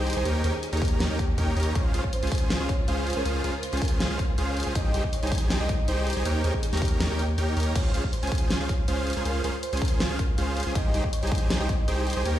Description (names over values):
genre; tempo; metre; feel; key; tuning
future bass; 160 BPM; 4/4; half-time; Db lydian; A4 = 440 Hz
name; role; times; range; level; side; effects
thumb-piano-like synth pluck; melody; 0.0-12.4 s; G4 to Eb5; -35 LUFS; right 1 dB; ensemble chorus, sidechain pumping, tape echo
clear studio string section; sustained chords; 0.0-7.7 s; Db3 to F4; -40 LUFS; left 2 dB; none
supersaw chords; riff; 0.0-12.4 s; Db4 to Bb5; -30 LUFS; right 1 dB; sidechain pumping, digital delay
saturated sub bass; bass; 0.0-12.4 s; C2 to Eb2; -27 LUFS; equal; sidechain pumping
big-room dance drum kit; drums; 0.1-12.3 s; crash cymbal, hi-hat, snare drum; -33 LUFS; left 1 dB; none
electronic kick drum; drums; 0.8-11.8 s; none; -27 LUFS; equal; none
room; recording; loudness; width
digital ambience; played on a big sound system in a bare room, stone room reverb; -23 LUFS; side -12 dB against mid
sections
0.0-7.8 A section; 7.8-12.4 A section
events
drop 0.0-7.8, 7.8-12.4; kick drops out 7.0-7.8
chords
0.3 Eb7; 1.8 Dbmaj7; 4.8 Abmaj7/C; 6.3 Eb7; 7.8 Dbmaj7; 10.8 Abmaj7/C